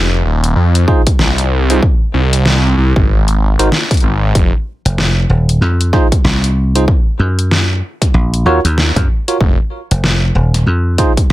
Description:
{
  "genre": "glitch hop",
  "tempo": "95 BPM",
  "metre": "4/4",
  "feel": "swing 60% on 16ths",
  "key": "F phrygian",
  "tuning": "A4 = 440 Hz",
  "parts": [
    { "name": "phased detuned saw bass", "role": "bass", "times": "0.0-4.5, 9.4-9.6 s", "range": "Eb1 to F2", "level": "-12 LUFS", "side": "equal", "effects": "phaser, tube saturation" },
    { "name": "dubstep drum kit", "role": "drums", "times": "0.4-11.3 s", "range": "hi-hat, snare drum", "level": "-17 LUFS", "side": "equal", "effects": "none" },
    { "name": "bell-like tine electric piano", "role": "stabs", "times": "0.9-11.1 s", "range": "Eb4 to Db5", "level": "-16 LUFS", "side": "right 2 dB", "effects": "sidechain pumping, digital delay" },
    { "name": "electronic kick drum", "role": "drums", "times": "0.9-11.3 s", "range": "none", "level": "-12 LUFS", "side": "equal", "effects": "none" },
    { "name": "dry thumbed slap bass", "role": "bass", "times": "4.9-11.3 s", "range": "Eb1 to Gb2", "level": "-12 LUFS", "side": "equal", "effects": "none" }
  ],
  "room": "little or no reverb",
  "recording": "none",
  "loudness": "-10 LUFS",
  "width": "side -16 dB against mid",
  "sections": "0.0-11.3 A section",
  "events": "none",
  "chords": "0.0 F7(no3); 1.8 Ab; 4.4 F7(no3); 6.9 Ebm; 9.4 F7(no3)",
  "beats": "0.56 1.20 | 1.83 2.46 3.09 3.72 | 4.35 4.99 5.62 6.25 | 6.88 7.51 8.14 8.77 | 9.41 10.04 10.67 11.30"
}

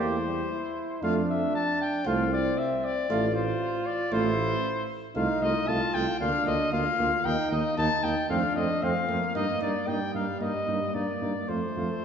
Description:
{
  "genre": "classical, brass quintet",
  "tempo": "115 BPM",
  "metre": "4/4",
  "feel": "rubato",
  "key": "F major",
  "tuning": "A4 = 440 Hz",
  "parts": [
    { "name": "clear trumpet", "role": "melody", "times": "0.0-12.0 s", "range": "C5 to A5", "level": "-29 LUFS", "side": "left 4 dB", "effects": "none" },
    { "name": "mellow trumpet", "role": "second line", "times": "0.0-11.9 s", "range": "C4 to G4", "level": "-36 LUFS", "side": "right 6 dB", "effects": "none" },
    { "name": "bright trombone", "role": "accompaniment", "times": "0.0-12.0 s", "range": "G3 to F4", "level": "-32 LUFS", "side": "right 2 dB", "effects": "none" },
    { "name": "mellow French horn", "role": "accompaniment", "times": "0.0-11.9 s", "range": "A3 to Bb3", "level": "-33 LUFS", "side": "equal", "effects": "none" },
    { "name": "mellow tuba", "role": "bass", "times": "0.0-11.9 s", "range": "A1 to G2", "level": "-31 LUFS", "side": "right 2 dB", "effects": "none" }
  ],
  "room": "wet concert hall reverb, RT60 1.7 s",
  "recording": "recorded in a church or concert hall, nothing above 7.9 kHz",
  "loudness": "-25 LUFS",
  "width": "side -7 dB against mid",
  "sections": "0.0-12.0 A section",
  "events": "none",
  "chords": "0.0 C7/E; 1.0 F; 3.1 F/A; 5.2 F7/C; 6.2 Bb/D; 7.2 Eb5; 8.3 F; 9.4 Eb/G; 11.5 F",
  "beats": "0.51 | 1.03 1.55 2.06 2.58 | 3.10 3.61 4.12 4.64 | 5.16 5.68 6.20 6.73 | 7.25 7.77 8.30 8.83 | 9.35 9.88 10.41 10.95 | 11.49 12.05"
}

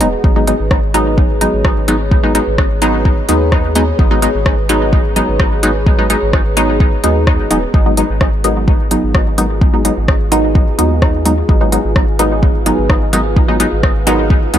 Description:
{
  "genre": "dub techno",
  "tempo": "128 BPM",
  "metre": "4/4",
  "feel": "straight",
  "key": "G# dorian",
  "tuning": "A4 = 440 Hz",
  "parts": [
    { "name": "dark analog pad", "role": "sustained chords", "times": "0.0-14.6 s", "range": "G#4 to G#5", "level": "-22 LUFS", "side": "equal", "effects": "chorus, sidechain pumping" },
    { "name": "filtered dub chord stab", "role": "stabs", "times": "0.0-14.6 s", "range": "F#3 to D#4", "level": "-15 LUFS", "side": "equal", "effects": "chorus, phaser, sidechain pumping, dub echo" },
    { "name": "soft dub sub bass", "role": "bass", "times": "0.0-14.6 s", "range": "D#1 to D#2", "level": "-18 LUFS", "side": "equal", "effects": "sidechain pumping" },
    { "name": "deep house drum kit", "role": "drums", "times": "0.0-14.6 s", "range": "hi-hat, rim click", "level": "-20 LUFS", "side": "left 1 dB", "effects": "none" },
    { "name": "electronic kick drum", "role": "drums", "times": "0.2-14.4 s", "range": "none", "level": "-12 LUFS", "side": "equal", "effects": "none" },
    { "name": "wind-like tuned noise texture", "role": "texture", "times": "8.9-14.6 s", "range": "E#4", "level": "-28 LUFS", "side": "right 2 dB", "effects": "none" },
    { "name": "warbly dusty pluck", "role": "riff", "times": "8.4-14.2 s", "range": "A#4 to F#5", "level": "-28 LUFS", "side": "left 3 dB", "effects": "none" }
  ],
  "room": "little or no reverb",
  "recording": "none",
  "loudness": "-10 LUFS",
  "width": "side -10 dB against mid",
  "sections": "0.0-14.6 A section",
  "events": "none",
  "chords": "0.0 G#m7",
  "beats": "| 0.24 0.71 1.18 1.65 | 2.12 2.58 3.05 3.52 | 3.99 4.46 4.93 5.40 | 5.87 6.33 6.80 7.27 | 7.74 8.21 8.68 9.15 | 9.62 10.08 10.55 11.02 | 11.49 11.96 12.43 12.90 | 13.37 13.83 14.30"
}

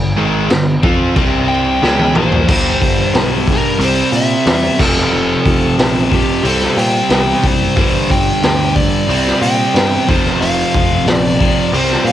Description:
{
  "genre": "hard rock",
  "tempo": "91 BPM",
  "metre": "4/4",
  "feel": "straight",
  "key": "G minor",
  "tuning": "A4 = 440 Hz",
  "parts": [
    { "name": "distorted electric guitar", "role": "riff", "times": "0.0-12.1 s", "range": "F2 to F4", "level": "-18 LUFS", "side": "left 9 dB", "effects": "overdrive, cassette tape" },
    { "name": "overdriven electric guitar", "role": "riff", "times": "0.0-12.1 s", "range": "F2 to F4", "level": "-18 LUFS", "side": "right 8 dB", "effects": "cassette tape" },
    { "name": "picked electric bass", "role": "bass", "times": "0.0-12.1 s", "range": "F1 to Bb2", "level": "-20 LUFS", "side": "equal", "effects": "none" },
    { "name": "raw garage drum kit", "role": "drums", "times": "0.5-12.1 s", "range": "crash cymbal, hi-hat, kick drum, snare drum, toms", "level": "-16 LUFS", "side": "equal", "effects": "cassette tape" },
    { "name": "smooth overdriven lead guitar", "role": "melody", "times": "1.5-12.1 s", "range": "G4 to G5", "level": "-18 LUFS", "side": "equal", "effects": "cassette tape" }
  ],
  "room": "little or no reverb",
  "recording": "home recording on cassette",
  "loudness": "-11 LUFS",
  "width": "side -12 dB against mid",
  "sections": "0.0-2.5 A section; 2.5-12.1 B section",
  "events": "drum fill 1.8-2.5",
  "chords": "0.0 G5; 1.2 C5; 1.8 Gm; 2.5 G5; 3.8 C; 4.8 F; 6.5 C5; 7.8 G5; 9.1 C5; 10.1 F5",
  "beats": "0.51 1.17 1.83 | 2.49 3.15 3.81 4.47 | 5.13 5.79 6.45 7.11 | 7.77 8.43 9.09 9.75 | 10.41 11.07 11.73"
}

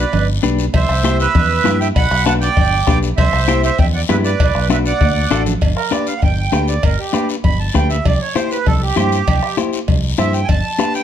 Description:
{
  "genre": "latin, cumbia",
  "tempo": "197 BPM",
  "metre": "4/4",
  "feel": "straight",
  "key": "G major",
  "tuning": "A4 = 439 Hz",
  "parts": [
    { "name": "accordion", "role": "melody", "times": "0.0-11.0 s", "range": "G4 to B5", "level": "-19 LUFS", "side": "right 6 dB", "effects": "plate reverb" },
    { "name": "clean electric guitar", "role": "accompaniment", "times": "0.0-11.0 s", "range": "D4 to C5", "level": "-20 LUFS", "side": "left 8 dB", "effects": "none" },
    { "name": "fingered electric bass", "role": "bass", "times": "0.0-10.6 s", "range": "G1 to G2", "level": "-18 LUFS", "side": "equal", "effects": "none" },
    { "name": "congas", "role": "percussion", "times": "0.1-10.9 s", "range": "none", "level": "-24 LUFS", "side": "right 6 dB", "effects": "none" },
    { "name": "cowbell and timbales", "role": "percussion", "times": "0.1-10.6 s", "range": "none", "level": "-27 LUFS", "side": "right 6 dB", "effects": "none" },
    { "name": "guiro", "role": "percussion", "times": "0.1-11.0 s", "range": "none", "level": "-29 LUFS", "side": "left 8 dB", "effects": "none" },
    { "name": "bombo", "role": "percussion", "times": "0.7-10.9 s", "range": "none", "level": "-18 LUFS", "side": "left 2 dB", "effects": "none" }
  ],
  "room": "light reverb",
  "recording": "close, detailed microphones",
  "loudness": "-13 LUFS",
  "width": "side -10 dB against mid",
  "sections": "0.0-5.6 A section; 5.6-11.0 B section",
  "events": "drum fill 5.0-5.6; accordion solo 5.6-11.0",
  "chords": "0.1 G; 0.7 C; 1.4 Em; 2.0 Bm; 2.6 G; 3.2 C; 3.8 Em; 4.4 Bm; 5.0 D; 5.6 G; 8.1 C; 10.5 G",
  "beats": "0.13 0.44 | 0.74 1.05 1.35 1.66 | 1.96 2.27 2.57 2.88 | 3.18 3.48 3.79 4.09 | 4.40 4.70 5.01 5.31 | 5.62 5.92 6.23 6.53 | 6.84 7.14 7.45 7.75 | 8.05 8.36 8.66 8.97 | 9.27 9.58 9.88 10.19 | 10.49 10.79"
}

